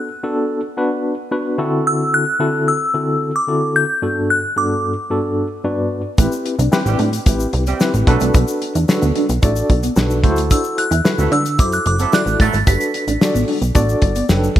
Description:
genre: early-eighties boogie funk.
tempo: 111 BPM.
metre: 4/4.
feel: straight.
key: unclear.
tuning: A4 = 440 Hz.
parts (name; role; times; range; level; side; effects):
delicate synth tine bell; melody; 0.0-5.9, 10.5-14.3 s; D6 to B6; -19 LUFS; equal; chorus, phaser.
mellow tine electric piano; accompaniment; 0.0-14.6 s; G2 to G5; -20 LUFS; left 1 dB; medium tremolo.
mellow electric guitar; riff; 6.2-14.6 s; G3 to E4; -25 LUFS; right 3 dB; ensemble chorus.
plucky analog bass; bass; 6.2-14.6 s; F#1 to D3; -18 LUFS; equal; none.
damped 70s drum kit; drums; 6.2-14.6 s; hi-hat, kick drum, snare drum; -17 LUFS; equal; gated reverb.
egg shaker; percussion; 6.2-14.6 s; none; -34 LUFS; left 8 dB; none.
mellow horn section; second line; 6.9-12.6 s; E3 to A4; -28 LUFS; right 6 dB; none.
room: moderate plate reverb, RT60 2.2 s.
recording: bright 1980s-style digital production.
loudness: -15 LUFS.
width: side -12 dB against mid.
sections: 0.0-14.6 A section.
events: tine electric piano fill 5.4-6.2, 13.8-14.6.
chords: 0.0 Bm7; 1.6 D9; 4.0 Gmaj7; 6.2 Am9; 8.1 Bm7; 10.2 D9; 12.7 Gmaj7.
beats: 0.24 0.78 1.32 | 1.86 2.40 2.94 3.48 | 4.02 4.56 5.10 5.64 | 6.18 6.72 7.26 7.80 | 8.35 8.88 9.43 9.97 | 10.51 11.05 11.59 12.13 | 12.67 13.21 13.75 14.29.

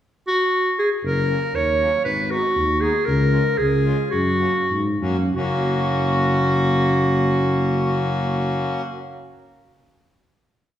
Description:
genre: alpine folk, alpine dance band.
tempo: 87-118 BPM.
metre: 2/4.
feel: straight.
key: F# major.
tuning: A4 = 440 Hz.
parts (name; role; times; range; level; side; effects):
bright clarinet; melody; 0.3-8.8 s; F#4 to C#5; -21 LUFS; right 1 dB; none.
dark tuba; bass; 1.0-8.8 s; F#1 to G#2; -22 LUFS; equal; none.
accordion; accompaniment; 1.3-8.8 s; F#3 to F#4; -25 LUFS; left 2 dB; none.
room: wet scoring stage reverb, RT60 1.6 s.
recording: recorded in a church or concert hall, small room ambience.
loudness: -18 LUFS.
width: side -11 dB against mid.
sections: 0.0-1.0 pickup bar; 1.0-5.4 A section; 5.4-8.1 final chord.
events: slowing down 3.1-5.4.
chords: 0.0 N.C.; 1.0 F#; 2.1 G#m; 3.1 C#; 4.1 F#.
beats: 0.50 | 1.02 1.54 | 2.05 2.56 | 3.07 3.59 | 4.13 4.71 | 5.36 6.04 | 6.71 7.38.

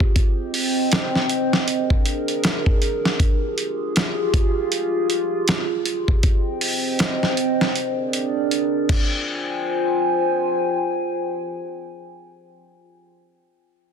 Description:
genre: trip hop.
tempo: 79 BPM.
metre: 4/4.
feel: swing 60% on 16ths.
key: F dorian.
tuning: A4 = 440 Hz.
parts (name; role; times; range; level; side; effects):
dark analog pad; sustained chords; 0.0-12.9 s; C4 to Ab5; -22 LUFS; right 1 dB; chorus, phaser.
dusty soul sampler-style drum kit; drums; 0.0-9.1 s; crash cymbal, hi-hat, kick drum, snare drum; -20 LUFS; equal; none.
room: light reverb, digital ambience.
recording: dense, heavily limited modern master.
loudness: -19 LUFS.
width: side -7 dB against mid.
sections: 0.0-9.3 A section; 9.3-12.3 B section.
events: none.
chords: 0.2 Cm; 1.7 Bb7/D; 3.2 Fmadd9; 6.2 Cm; 7.7 Bb7/D; 8.9 Fmadd9.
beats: | 0.15 0.91 1.67 2.43 | 3.19 3.95 4.71 5.47 | 6.23 6.99 7.75 8.51 | 9.27 10.03 10.79 11.55.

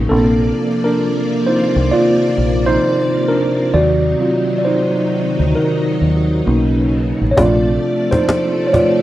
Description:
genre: lo-fi hip hop.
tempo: 66 BPM.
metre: 4/4.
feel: swing 64% on 16ths.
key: Bb major.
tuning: A4 = 440 Hz.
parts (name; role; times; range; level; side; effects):
mellow tine electric piano; accompaniment; 0.0-9.0 s; Gb3 to D5; -15 LUFS; right 1 dB; medium stereo tremolo, cassette tape.
string machine, violins; sustained chords; 0.0-9.0 s; B2 to D5; -19 LUFS; equal; ensemble chorus.
deep dub fingered electric bass; bass; 0.0-7.8 s; A1 to Eb2; -16 LUFS; equal; none.
cajon; drums; 7.4-9.0 s; none; -18 LUFS; equal; none.
room: wet studio reverb, RT60 0.7 s.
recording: rough home demo mix, vinyl crackle.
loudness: -13 LUFS.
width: side -14 dB against mid.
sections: 0.0-9.0 A section.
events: tine electric piano solo 0.0-9.0.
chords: 0.1 Bbadd9; 3.7 Ebm6; 6.5 Bmaj9; 7.4 Bbmaj9.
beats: | 0.10 1.01 1.92 2.83 | 3.74 4.64 5.55 6.46 | 7.37 8.28.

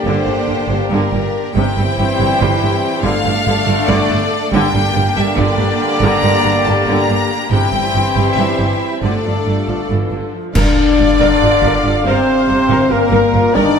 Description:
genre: cinematic, epic orchestral film score.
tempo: 281 BPM (eighths).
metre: 7/8.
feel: straight.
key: G dorian, G minor from 10.6 s.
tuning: A4 = 444 Hz.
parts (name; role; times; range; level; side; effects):
clear studio violin section; second line; 0.0-13.8 s; D4 to D5; -23 LUFS; left 3 dB; none.
rich symphonic viola section; accompaniment; 0.0-13.8 s; C3 to F5; -22 LUFS; right 1 dB; none.
clear trombone section; sustained chords; 0.0-13.8 s; Bb2 to A3; -23 LUFS; right 4 dB; none.
warm French horn section; sustained chords; 0.0-13.8 s; A3 to G4; -20 LUFS; left 5 dB; none.
clear trumpet section; stabs; 0.0-13.8 s; A4 to D5; -22 LUFS; equal; none.
bright symphonic cello section; bass; 0.0-13.6 s; G2; -21 LUFS; right 3 dB; none.
rich studio violin section; melody; 0.1-13.8 s; Bb4 to Bb5; -21 LUFS; left 4 dB; none.
clear studio double bass section; bass; 0.1-13.6 s; G1; -20 LUFS; right 3 dB; none.
mellow hollow concert flute; second line; 10.6-13.8 s; Bb4 to D5; -22 LUFS; left 1 dB; none.
clash cymbals and concert bass drum; percussion; 10.6-11.4 s; none; -19 LUFS; equal; none.
room: moderate scoring stage reverb, RT60 2.0 s.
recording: none.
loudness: -12 LUFS.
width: side -6 dB against mid.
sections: 0.0-10.6 A section; 10.6-13.8 B section.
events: band accent 10.6-11.0.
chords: 0.0 Gm; 1.6 C/G; 3.0 Dm/G; 4.5 Gm; 7.5 C/G; 9.0 Dm/G; 10.6 Gm7.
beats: | 0.05 0.27 0.48 0.69 0.91 1.12 1.34 | 1.55 1.77 1.98 2.19 2.40 2.62 2.83 | 3.04 3.25 3.46 3.67 3.89 4.10 4.32 | 4.53 4.74 4.96 5.17 5.38 5.59 5.81 | 6.02 6.24 6.45 6.66 6.87 7.09 7.30 | 7.51 7.73 7.94 8.15 8.37 8.59 8.80 | 9.02 9.24 9.46 9.68 9.90 10.12 10.34 | 10.55 10.77 10.99 11.20 11.41 11.63 11.84 | 12.05 12.27 12.48 12.69 12.91 13.12 13.34 | 13.55 13.76.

